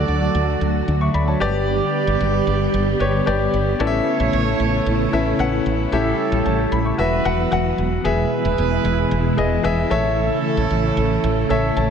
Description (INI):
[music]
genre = pop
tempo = 113 BPM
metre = 4/4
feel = straight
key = A mixolydian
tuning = A4 = 440 Hz
[part]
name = warm grand piano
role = accompaniment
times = 0.0-11.9 s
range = C#4 to C#6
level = -22 LUFS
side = left 4 dB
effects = none
[part]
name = soft string machine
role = sustained chords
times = 0.0-11.9 s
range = B2 to G4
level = -22 LUFS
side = equal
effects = ensemble chorus
[part]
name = clear horn section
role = stabs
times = 0.0-11.9 s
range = C#4 to D5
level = -25 LUFS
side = right 8 dB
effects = ping-pong delay
[part]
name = woody fretless electric bass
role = bass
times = 0.0-11.9 s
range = E1 to D2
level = -22 LUFS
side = equal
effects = none
[sound]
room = light reverb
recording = none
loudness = -17 LUFS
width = side -7 dB against mid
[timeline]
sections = 0.0-8.0 A section; 8.0-11.9 A section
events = none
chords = 0.0 D; 1.4 G; 3.8 Aadd9; 5.9 A7; 7.0 Esus2; 8.0 E; 9.9 A